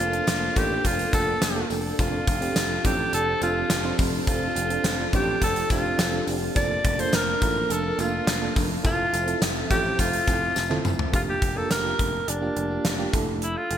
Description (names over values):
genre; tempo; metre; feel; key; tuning
1980s-style pop; 105 BPM; 4/4; straight; F major; A4 = 440 Hz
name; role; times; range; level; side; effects
clear alto saxophone; melody; 0.0-13.8 s; D4 to D5; -26 LUFS; equal; digital delay
FM electric piano with tremolo; accompaniment; 0.0-13.8 s; A3 to C5; -30 LUFS; right 4 dB; none
string machine, violins; sustained chords; 0.0-11.1 s; F3 to E5; -32 LUFS; left 1 dB; ensemble chorus
picked electric bass; bass; 0.0-13.8 s; F1 to A1; -31 LUFS; equal; none
gated 80s drum kit; drums; 0.1-13.8 s; hi-hat, kick drum, snare drum, toms; -26 LUFS; equal; none
tambourine; percussion; 0.3-11.0 s; none; -41 LUFS; left 7 dB; none
room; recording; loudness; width
moderate lush hall reverb, RT60 2.0 s; bright 1980s-style digital production; -22 LUFS; side -10 dB against mid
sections
0.0-11.1 A section; 11.1-13.8 B section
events
drum fill 10.6-11.1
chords
0.0 Bbmaj7/F; 2.0 F6; 6.6 Bbmaj7/F; 8.8 Fmaj7; 11.1 Gm7/F; 13.1 Asus4/F